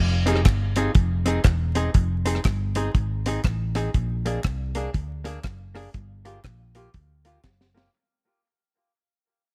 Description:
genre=ska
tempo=120 BPM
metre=4/4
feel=swing 62% on 8ths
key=F dorian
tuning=A4 = 440 Hz
part: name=hollow-body short-scale fingered electric bass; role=bass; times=0.0-7.9 s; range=E1 to D2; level=-28 LUFS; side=equal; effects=none
part: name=hollow-body jazz guitar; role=accompaniment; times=0.3-7.9 s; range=Bb3 to Ab4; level=-31 LUFS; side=equal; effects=dub echo
part: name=deep reggae drum kit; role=drums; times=0.3-7.9 s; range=hi-hat, kick drum, rim click, snare drum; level=-24 LUFS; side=equal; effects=none
part: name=group handclap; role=percussion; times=0.5-7.6 s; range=none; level=-44 LUFS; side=equal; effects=none
room=little or no reverb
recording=vinyl crackle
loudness=-24 LUFS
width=mono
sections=0.0-7.9 A section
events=fade-out 0.0-7.9; drum fill 7.4-7.9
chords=0.0 Fm7; 3.9 Bb7; 5.9 Gm7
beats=0.46 0.95 1.45 | 1.95 2.45 2.95 3.45 | 3.95 4.45 4.95 5.45 | 5.95 6.45 6.94 7.44

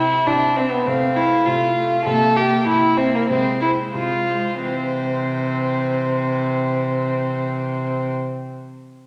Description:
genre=quick classical-period movement for string quartet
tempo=87-101 BPM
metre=2/4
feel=straight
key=C major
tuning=A4 = 436 Hz
part: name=warm violin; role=melody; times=0.0-8.1 s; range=C5 to F5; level=-32 LUFS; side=equal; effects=none
part: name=warm violin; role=second line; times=0.0-8.1 s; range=Bb3 to A4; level=-22 LUFS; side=equal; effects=none
part: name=warm viola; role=accompaniment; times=0.0-8.1 s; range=E3 to C4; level=-30 LUFS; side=equal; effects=none
part: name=warm cello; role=bass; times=0.0-8.1 s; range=C3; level=-29 LUFS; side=equal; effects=none
room=wet scoring stage reverb, RT60 1.9 s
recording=none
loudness=-20 LUFS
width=mono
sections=0.0-4.6 A section; 4.6-7.3 B section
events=slowing down 1.5-4.6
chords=0.0 C; 0.9 F/C; 2.1 C7; 3.3 Fm/C; 4.6 C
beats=0.26 | 0.86 1.46 | 2.06 2.67 | 3.29 3.94 | 4.62 5.30 | 5.98 6.67

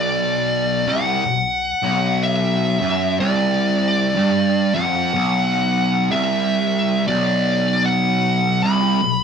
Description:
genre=metal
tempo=62 BPM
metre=4/4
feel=swing 60% on 8ths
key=B phrygian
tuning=A4 = 442 Hz
part: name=fuzz lead guitar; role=melody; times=0.0-9.2 s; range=D5 to B5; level=-20 LUFS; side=left 1 dB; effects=distortion
part: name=fuzz guitar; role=riff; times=0.0-9.2 s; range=B1 to G2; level=-18 LUFS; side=right 1 dB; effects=distortion
room=light reverb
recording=band playing live in one room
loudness=-16 LUFS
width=side -6 dB against mid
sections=0.0-9.2 A section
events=none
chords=0.0 B5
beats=0.28 1.25 2.22 | 3.19 4.16 5.13 6.11 | 7.08 8.05 9.02

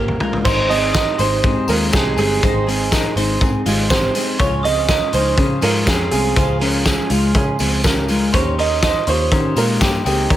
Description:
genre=jangly indie pop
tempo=122 BPM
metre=4/4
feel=straight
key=Ab major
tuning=A4 = 439 Hz
part: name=warm upright piano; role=melody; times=0.0-10.4 s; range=G4 to Eb5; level=-21 LUFS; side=right 4 dB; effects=slapback echo, plate reverb
part: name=glockenspiel with soft plastic mallets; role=second line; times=0.0-10.4 s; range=G5 to Eb6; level=-28 LUFS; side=left 5 dB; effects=plate reverb
part: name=picked twelve-string acoustic guitar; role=accompaniment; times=0.0-10.4 s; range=Db3 to Bb4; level=-25 LUFS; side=right 5 dB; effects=none
part: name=semi-hollow electric guitar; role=arpeggios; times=0.0-10.4 s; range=Ab3 to Db5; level=-22 LUFS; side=left 3 dB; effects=wide subtle chorus, slapback echo
part: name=vintage muted picked electric bass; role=bass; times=0.0-10.4 s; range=G1 to Eb3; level=-22 LUFS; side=equal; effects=none
part: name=loose indie drum kit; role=drums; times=0.1-10.4 s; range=crash cymbal, hi-hat, kick drum, snare drum, toms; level=-19 LUFS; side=equal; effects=none
part: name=tambourine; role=percussion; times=0.5-10.4 s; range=none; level=-33 LUFS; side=left 6 dB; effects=none
room=light reverb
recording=none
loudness=-14 LUFS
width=side -12 dB against mid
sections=0.5-10.4 A section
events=drum fill 0.0-0.5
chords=0.5 Abmaj7; 4.4 Db; 8.3 Eb7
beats=| 0.45 0.95 1.44 1.94 | 2.43 2.92 3.41 3.91 | 4.40 4.89 5.38 5.88 | 6.37 6.86 7.35 7.85 | 8.34 8.83 9.32 9.81 | 10.31

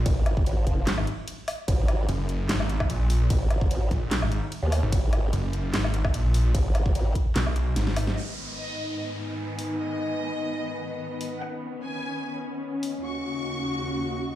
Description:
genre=heavy wobble dubstep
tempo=148 BPM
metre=4/4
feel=swing 53% on 16ths, half-time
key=G# minor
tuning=A4 = 441 Hz
part: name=snarling distorted saw bass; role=bass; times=0.0-8.2 s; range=F#1 to B1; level=-24 LUFS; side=equal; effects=distortion, overdrive
part: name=formant-sweep wobble bass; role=bass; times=0.1-7.1 s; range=F#1 to D#2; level=-24 LUFS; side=equal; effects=chorus, overdrive
part: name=dubstep drum kit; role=drums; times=0.1-12.9 s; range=handclaps, hi-hat, ride cymbal, snare drum, woodblock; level=-31 LUFS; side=equal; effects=none
part: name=electronic kick drum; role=drums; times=0.1-7.2 s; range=none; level=-25 LUFS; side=equal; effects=none
part: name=rich chamber violin section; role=melody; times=8.2-14.4 s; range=D#5 to C#6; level=-35 LUFS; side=left 1 dB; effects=dub echo
part: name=muted studio string section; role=sustained chords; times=8.2-14.4 s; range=D#2 to F#4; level=-34 LUFS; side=left 1 dB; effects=sidechain pumping, low-pass filter
part: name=downlifter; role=sound effects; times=8.2-11.4 s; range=none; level=-39 LUFS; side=right 1 dB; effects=none
part: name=warbly tape-like pad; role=texture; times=8.7-14.4 s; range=C#4 to G#5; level=-32 LUFS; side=left 1 dB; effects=chorus, built-in reverb, sidechain pumping
room=light reverb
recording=played on a big sound system in a bare room, large studio reverb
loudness=-24 LUFS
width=side -13 dB against mid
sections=0.0-8.2 A section; 8.2-14.4 B section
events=drop 0.0-8.2; drum fill 7.8-8.2; band accent 8.1; filter sweep on string section 8.2-14.4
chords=0.0 G#sus2; 8.2 G#m; 11.4 Badd9; 13.0 D#m7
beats=| 0.06 0.47 0.87 1.28 | 1.68 2.09 2.49 2.90 | 3.30 3.71 4.11 4.52 | 4.92 5.33 5.74 6.14 | 6.55 6.95 7.36 7.76 | 8.17 8.57 8.98 9.38 | 9.79 10.20 10.60 11.01 | 11.41 11.82 12.22 12.63 | 13.03 13.44 13.84 14.25

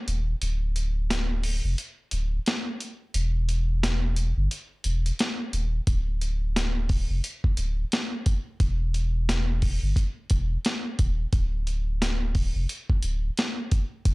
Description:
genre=hip hop, boom-bap hip-hop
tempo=88 BPM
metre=4/4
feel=swing 59% on 16ths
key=D minor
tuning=A4 = 437 Hz
part: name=saturated sub bass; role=bass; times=0.1-14.1 s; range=D1 to G1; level=-25 LUFS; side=equal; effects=none
part: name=boom bap sampler-style drum kit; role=drums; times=0.1-14.1 s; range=hi-hat, kick drum, snare drum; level=-26 LUFS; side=equal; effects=none
room=little or no reverb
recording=dry, gritty hardware recording, cassette tape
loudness=-24 LUFS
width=side -23 dB against mid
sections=0.0-14.1 A section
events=break 0.0-5.9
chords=none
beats=| 0.42 1.10 1.78 2.46 | 3.15 3.83 4.51 5.19 | 5.87 6.55 7.24 7.92 | 8.60 9.28 9.96 10.64 | 11.33 12.01 12.69 13.37 | 14.05

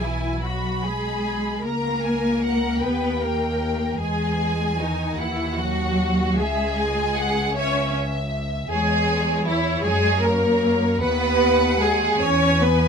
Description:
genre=classical, slow romantic movement for string orchestra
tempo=51 BPM (dotted quarters)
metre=6/8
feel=rubato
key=unclear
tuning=A4 = 441 Hz
part: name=warm symphonic violin section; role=melody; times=0.0-12.9 s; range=C#5 to B5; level=-29 LUFS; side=left 2 dB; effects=none
part: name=warm symphonic violin section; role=second line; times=0.0-12.9 s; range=D#4 to C#5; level=-24 LUFS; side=right 1 dB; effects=none
part: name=rich symphonic viola section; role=accompaniment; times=0.0-12.9 s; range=D#4 to C#5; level=-27 LUFS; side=left 2 dB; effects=none
part: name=rich symphonic double bass section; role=bass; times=0.0-12.9 s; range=B1 to F#2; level=-26 LUFS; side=equal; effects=none
part: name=warm symphonic cello section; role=bass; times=0.0-12.9 s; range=D#3 to C#4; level=-26 LUFS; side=equal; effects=none
room=light reverb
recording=close, detailed microphones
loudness=-19 LUFS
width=side -6 dB against mid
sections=0.0-12.9 A section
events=none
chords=0.0 G#m/B; 1.6 F#add9/C#; 2.8 D#; 4.0 E; 6.4 C#m; 8.7 C#m/E; 9.9 F#; 11.0 B/D#; 12.2 E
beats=0.44 | 1.65 2.83 | 4.01 5.19 | 6.38 7.56 | 8.71 9.85 | 11.02 12.21

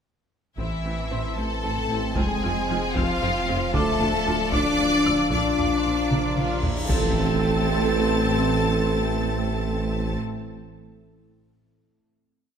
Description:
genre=cinematic, hybrid orchestral and electronic film score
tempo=76 BPM (dotted quarters)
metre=6/8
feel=straight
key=A phrygian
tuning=A4 = 440 Hz
part: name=clear symphonic violin section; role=melody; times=0.6-10.2 s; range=E5 to A6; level=-30 LUFS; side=left 1 dB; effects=none
part: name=bright studio violin section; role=second line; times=0.6-10.2 s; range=E4 to A5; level=-31 LUFS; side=left 3 dB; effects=none
part: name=rich symphonic viola section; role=accompaniment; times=0.6-10.2 s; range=C4 to A4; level=-30 LUFS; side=right 2 dB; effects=none
part: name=analog drone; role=sustained chords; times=1.0-10.2 s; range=E3 to C5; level=-33 LUFS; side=left 1 dB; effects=chorus
part: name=dark French horn section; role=sustained chords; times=0.6-10.2 s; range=E3 to D4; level=-29 LUFS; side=left 5 dB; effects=none
part: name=warm trombone section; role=sustained chords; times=0.6-10.2 s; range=E3 to D4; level=-33 LUFS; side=right 2 dB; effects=none
part: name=mellow tuba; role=bass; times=0.6-10.2 s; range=F1 to D2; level=-31 LUFS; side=right 4 dB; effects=none
part: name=rich symphonic cello section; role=bass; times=0.6-10.2 s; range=E3 to D4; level=-31 LUFS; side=right 2 dB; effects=none
part: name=rich symphonic double bass section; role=bass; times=0.6-10.2 s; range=A1 to F2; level=-32 LUFS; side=right 4 dB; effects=none
part: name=saturated sub bass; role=bass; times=0.6-10.2 s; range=D1 to Bb1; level=-32 LUFS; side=equal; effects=none
part: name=taiko ensemble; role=drums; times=0.6-7.9 s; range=none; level=-29 LUFS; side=equal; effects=none
part: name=dark baby grand piano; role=texture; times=1.1-6.9 s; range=C5 to E6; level=-39 LUFS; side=equal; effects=ping-pong delay
part: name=cymbal swell and impact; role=sound effects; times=6.3-8.5 s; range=none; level=-32 LUFS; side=equal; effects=none
room=moderate scoring stage reverb, RT60 1.8 s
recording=none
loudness=-21 LUFS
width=side -7 dB against mid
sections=0.6-6.9 theme; 6.9-10.1 final chord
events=drum fill 6.1-6.9; cymbal swell 6.3-6.9; impact 6.9-8.5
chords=0.6 Am; 2.2 Fm; 3.7 Dm; 5.3 Bb; 6.9 Am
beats=| 0.58 1.37 | 2.16 2.95 | 3.74 4.53 | 5.32 6.11 | 6.90 7.68 | 8.47 9.26

